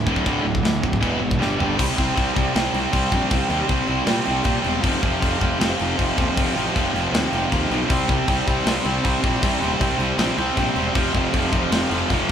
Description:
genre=heavy metal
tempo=157 BPM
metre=4/4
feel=straight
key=unclear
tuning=A4 = 439 Hz
part: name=heavy high-gain guitar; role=riff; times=0.0-1.8, 7.9-12.3 s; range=D2 to C4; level=-29 LUFS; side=equal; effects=distortion
part: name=high-gain distorted guitar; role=riff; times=0.0-12.3 s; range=D2 to C4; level=-25 LUFS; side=left 8 dB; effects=distortion
part: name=high-gain distorted guitar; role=riff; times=0.0-12.3 s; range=D2 to C4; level=-23 LUFS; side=right 6 dB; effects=distortion
part: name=fuzz picked electric bass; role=bass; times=0.0-12.3 s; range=D1 to Bb2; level=-26 LUFS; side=left 1 dB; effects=overdrive
part: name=tight metal drum kit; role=drums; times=0.1-12.3 s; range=china cymbal, crash cymbal, kick drum, snare drum, toms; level=-24 LUFS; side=equal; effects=none
room=moderate large studio reverb, RT60 1.2 s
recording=band playing live in one room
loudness=-18 LUFS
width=side -8 dB against mid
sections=0.0-1.8 A section; 1.8-12.3 B section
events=drum fill 1.4-1.8; half time 1.8-12.3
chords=0.0 D5; 1.0 E5; 1.4 G5; 1.8 C5; 4.8 F5; 7.9 C5; 11.0 F5

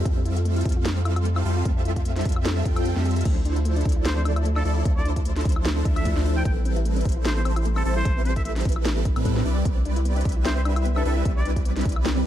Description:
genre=future bass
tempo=150 BPM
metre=4/4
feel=swing 55% on 16ths, half-time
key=C major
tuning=A4 = 440 Hz
part: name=supersaw chords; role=riff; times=0.0-12.2 s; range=F3 to G5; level=-28 LUFS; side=right 1 dB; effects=phaser, analog chorus, sidechain pumping, digital delay
part: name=saturated sub bass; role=bass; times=0.0-12.2 s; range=A1 to A2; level=-24 LUFS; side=equal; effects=sidechain pumping
part: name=soft round pluck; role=arpeggios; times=0.1-12.2 s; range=A3 to G4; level=-34 LUFS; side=left 3 dB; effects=chorus, sidechain pumping, digital delay
part: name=electronic kick drum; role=drums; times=0.1-11.9 s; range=none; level=-24 LUFS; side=equal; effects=overdrive, small room reverb
part: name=trap drum kit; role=drums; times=0.1-12.1 s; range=crash cymbal, hi-hat, snare drum, woodblock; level=-31 LUFS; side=left 1 dB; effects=small room reverb
part: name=trumpet with straight mute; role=melody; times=4.1-11.5 s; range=A4 to G5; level=-33 LUFS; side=equal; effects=sidechain pumping, ping-pong delay
room=little or no reverb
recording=dark, warm production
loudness=-21 LUFS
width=side -12 dB against mid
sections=0.0-12.3 A section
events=kick drops out 2.9-3.3; drum fill 3.1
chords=0.0 Fmaj9; 3.3 Dm9; 6.5 Am9; 9.5 Cmaj9

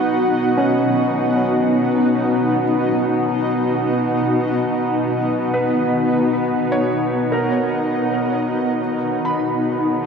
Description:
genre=ambient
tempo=free time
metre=none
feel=none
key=B major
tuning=A4 = 440 Hz
part: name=granular cloud pad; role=sustained chords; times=0.0-10.1 s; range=B3 to G#4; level=-18 LUFS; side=left 1 dB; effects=built-in reverb
part: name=warm studio cello section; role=bass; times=0.0-10.1 s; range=B2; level=-27 LUFS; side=left 1 dB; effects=none
part: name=glass harmonica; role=texture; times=0.0-10.1 s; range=F#4 to F#5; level=-25 LUFS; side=right 3 dB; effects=none
part: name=felt-muted upright piano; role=arpeggios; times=0.6-10.1 s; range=C#4 to B5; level=-25 LUFS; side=equal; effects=ping-pong delay
room=wet huge ambient reverb, RT60 8.7 s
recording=dark, warm production, faint mains hum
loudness=-16 LUFS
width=side -6 dB against mid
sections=0.0-10.1 A section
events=fade-out on felt piano 0.0-10.1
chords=0.0 B; 8.8 G#m7/B

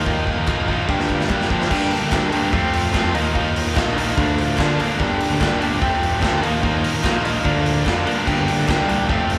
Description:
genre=indie rock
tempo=146 BPM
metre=4/4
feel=straight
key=G minor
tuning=A4 = 440 Hz
part: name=combo organ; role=sustained chords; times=0.0-9.4 s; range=F4 to Bb5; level=-34 LUFS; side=equal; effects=none
part: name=cranked stack guitar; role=riff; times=0.0-9.4 s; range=F2 to G4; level=-24 LUFS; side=equal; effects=overdrive
part: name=twelve-string electric guitar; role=riff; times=0.0-9.4 s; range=G2 to G4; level=-27 LUFS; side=equal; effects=none
part: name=fuzz picked electric bass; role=bass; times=0.0-9.4 s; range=F1 to G3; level=-27 LUFS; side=equal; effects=overdrive
part: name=raw garage drum kit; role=drums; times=0.1-9.4 s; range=crash cymbal, hi-hat, kick drum, snare drum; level=-25 LUFS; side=equal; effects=none
part: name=group handclap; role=percussion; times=0.5-8.8 s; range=none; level=-41 LUFS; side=equal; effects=none
room=moderate large studio reverb, RT60 1.5 s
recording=band playing live in one room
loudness=-19 LUFS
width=mono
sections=0.0-1.7 A section; 1.7-9.4 A section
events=drum fill 0.1-1.7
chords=0.0 Ebsus2; 0.9 Gm7; 1.7 Gm; 2.5 Fadd9; 3.1 Ebsus2; 4.2 Bb/D; 5.0 Gm; 5.8 Fadd9; 6.4 Ebsus2; 7.5 Bb/D; 8.3 Gm

